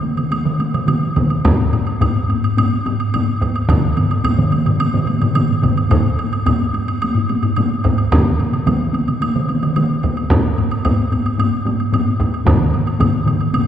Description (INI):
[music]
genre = japanese traditional, taiko drum ensemble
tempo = 109 BPM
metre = 4/4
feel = straight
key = none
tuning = none
[part]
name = taiko ensemble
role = percussion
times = 0.0-13.7 s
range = none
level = -21 LUFS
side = left 1 dB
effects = none
[part]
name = taiko ensemble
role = percussion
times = 0.2-13.7 s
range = none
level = -19 LUFS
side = right 1 dB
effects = none
[part]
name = woodblock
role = percussion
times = 0.2-13.7 s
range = none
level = -25 LUFS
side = right 2 dB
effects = none
[part]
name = solo taiko drums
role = percussion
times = 1.2-13.1 s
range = none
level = -19 LUFS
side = right 1 dB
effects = none
[part]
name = taiko ensemble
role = percussion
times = 1.4-13.7 s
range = none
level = -19 LUFS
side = left 2 dB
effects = none
[sound]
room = wet concert hall reverb, RT60 2.2 s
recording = heard from further back in the room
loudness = -14 LUFS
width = side -10 dB against mid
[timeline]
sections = 0.0-13.7 A section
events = speeding up 0.0-13.7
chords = none